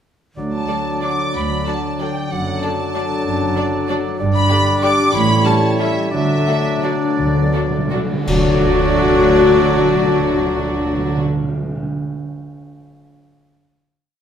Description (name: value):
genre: classical, orchestral ballroom waltz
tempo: 156-206 BPM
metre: 3/4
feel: rubato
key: D major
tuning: A4 = 439 Hz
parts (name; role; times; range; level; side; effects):
- clear oboe; second line; 0.4-11.2 s; C#5 to D5; -26 LUFS; right 2 dB; none
- mellow clarinet; second line; 0.4-11.2 s; D4 to E4; -27 LUFS; left 1 dB; none
- warm bassoon; accompaniment; 0.4-11.2 s; F#3 to G3; -26 LUFS; right 1 dB; none
- mellow French horn section; sustained chords; 0.4-11.2 s; G3 to A4; -25 LUFS; left 5 dB; none
- warm trombone section; sustained chords; 0.4-11.2 s; D3 to A3; -27 LUFS; right 2 dB; none
- concert harp; arpeggios; 0.4-12.2 s; F#2 to D5; -26 LUFS; left 6 dB; none
- dark studio cello section; bass; 0.4-11.2 s; D2 to D3; -25 LUFS; right 3 dB; none
- dark studio double bass section; bass; 0.4-11.2 s; F#1 to D2; -25 LUFS; right 4 dB; none
- warm studio violin section; melody; 0.5-11.2 s; D5 to D6; -26 LUFS; left 2 dB; none
- hollow concert flute; second line; 0.5-11.2 s; F#4 to D6; -22 LUFS; left 2 dB; none
- warm studio violin section; second line; 0.7-11.2 s; D4 to D5; -27 LUFS; left 2 dB; none
- rich studio viola section; accompaniment; 0.7-11.2 s; D3 to D4; -24 LUFS; left 1 dB; none
- timpani; percussion; 5.1-11.9 s; A2 to D3; -24 LUFS; right 2 dB; none
- cymbal swell, clash cymbals and concert bass drum; percussion; 6.1-9.0 s; none; -26 LUFS; right 1 dB; none
room: wet recital hall reverb, RT60 1.4 s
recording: none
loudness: -15 LUFS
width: side -8 dB against mid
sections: 0.4-8.3 A section; 8.3-10.4 final chord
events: slowing down 5.6-8.3; timpani fill 6.1-8.3; band accent 8.3-8.6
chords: 0.4 D; 2.3 D/F#; 4.2 G; 5.1 A7; 6.1 D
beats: | 0.38 0.70 1.03 | 1.35 1.68 2.00 | 2.31 2.63 2.95 | 3.26 3.57 3.89 | 4.20 4.50 4.83 | 5.13 5.45 5.79 | 6.12 6.47 6.83 | 7.18 7.54 7.92 | 8.28 8.63 9.01 | 9.36 9.71 10.09